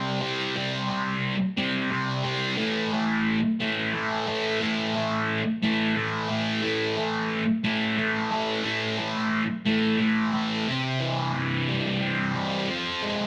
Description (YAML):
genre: rock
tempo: 59 BPM (dotted quarters)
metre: 6/8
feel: straight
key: unclear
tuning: A4 = 439 Hz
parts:
  - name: thick fuzz guitar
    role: solo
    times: 0.0-13.3 s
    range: A2 to C4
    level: -26 LUFS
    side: equal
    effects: distortion, phaser
room: moderate studio reverb, RT60 0.8 s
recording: faint mains hum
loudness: -26 LUFS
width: mono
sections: 0.0-10.7 A section; 10.7-13.3 B section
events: none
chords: 0.0 C5; 2.6 A5; 10.7 C; 12.7 Fm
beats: | 0.57 1.58 | 2.60 3.61 | 4.62 5.63 | 6.64 7.65 | 8.66 9.67 | 10.68 11.69 | 12.70